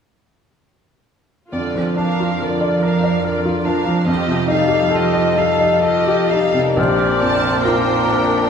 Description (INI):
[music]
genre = classical, romantic movement for piano and orchestra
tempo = 61-72 BPM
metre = 3/4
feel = rubato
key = Bb major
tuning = A4 = 439 Hz
[part]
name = bright baby grand piano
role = melody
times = 1.5-8.5 s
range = Bb1 to Eb5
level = -17 LUFS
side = left 1 dB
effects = none
[part]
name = rich studio violin section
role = second line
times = 1.5-8.5 s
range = D4 to F5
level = -23 LUFS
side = left 2 dB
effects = none
[part]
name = rich studio viola section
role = accompaniment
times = 1.5-8.5 s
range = D3 to D5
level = -23 LUFS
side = equal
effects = none
[part]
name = warm studio cello section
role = bass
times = 1.5-8.5 s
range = F2 to Bb2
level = -24 LUFS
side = right 5 dB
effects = none
[part]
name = clear clarinet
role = second line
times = 6.8-8.5 s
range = D4 to G4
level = -25 LUFS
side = left 3 dB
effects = none
[part]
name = clear cor anglais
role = second line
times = 6.8-8.5 s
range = Bb4 to C5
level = -24 LUFS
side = right 4 dB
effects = none
[part]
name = silver concert flute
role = second line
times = 6.8-8.5 s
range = D6 to F6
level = -22 LUFS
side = left 4 dB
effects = none
[part]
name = mellow bassoon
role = accompaniment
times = 6.8-8.5 s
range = C4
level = -23 LUFS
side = equal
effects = none
[part]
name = dark studio violin section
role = melody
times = 7.2-8.5 s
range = G5 to A5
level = -26 LUFS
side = left 1 dB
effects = none
[sound]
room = wet recital hall reverb, RT60 1.6 s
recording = recorded in a church or concert hall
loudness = -14 LUFS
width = side -7 dB against mid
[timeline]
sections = 1.5-6.8 A section; 6.8-8.5 B section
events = none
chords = 1.5 Bb/F; 4.1 F9; 6.8 Bb